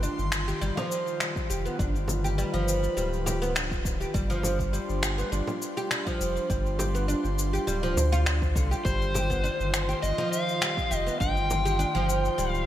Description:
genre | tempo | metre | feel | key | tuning
organic downtempo | 102 BPM | 4/4 | swing 53% on 16ths | unclear | A4 = 439 Hz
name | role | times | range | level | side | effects
airy breathy pad | sustained chords | 0.0-12.7 s | Eb3 to C6 | -34 LUFS | left 1 dB | chorus, sidechain pumping, shimmer reverb
oud | arpeggios | 0.0-12.7 s | D3 to G4 | -31 LUFS | right 1 dB | ping-pong delay, shimmer reverb
warm sub bass | bass | 0.0-12.7 s | D1 to D2 | -28 LUFS | equal | none
electronic cabasa and finger snaps | drums | 0.0-12.7 s | none | -33 LUFS | left 2 dB | gated reverb
frame drum | percussion | 0.8-11.6 s | none | -37 LUFS | right 1 dB | none
electronic kick drum | drums | 1.4-11.3 s | none | -31 LUFS | equal | none
overdriven slide guitar | melody | 8.9-12.7 s | C5 to G5 | -29 LUFS | left 1 dB | ping-pong delay, shimmer reverb
room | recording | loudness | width
light reverb, digital ambience | bright 1980s-style digital production | -25 LUFS | side -12 dB against mid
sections
0.0-12.7 A section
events
none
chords
0.0 F5; 4.1 G7sus4; 8.9 F5

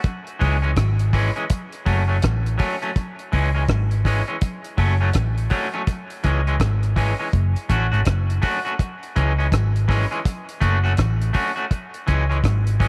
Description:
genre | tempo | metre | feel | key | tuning
roots reggae | 82 BPM | 4/4 | swing 63% on 16ths | C# minor | A4 = 440 Hz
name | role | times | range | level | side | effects
deep reggae drum kit | drums | 0.0-12.9 s | hi-hat, kick drum, rim click | -26 LUFS | equal | none
electric guitar at the edge of break-up | accompaniment | 0.4-12.9 s | E3 to F#4 | -27 LUFS | equal | dub echo
vintage muted fingered electric bass | bass | 0.4-12.9 s | F#1 to C#2 | -22 LUFS | equal | none
room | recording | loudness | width
light reverb, small room ambience | none | -21 LUFS | mono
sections
0.0-12.9 A section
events
none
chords
0.0 C#m; 1.5 F#m; 3.0 C#m; 4.4 F#m; 5.9 C#m; 7.3 F#m; 8.8 C#m; 10.3 F#m; 11.7 C#m

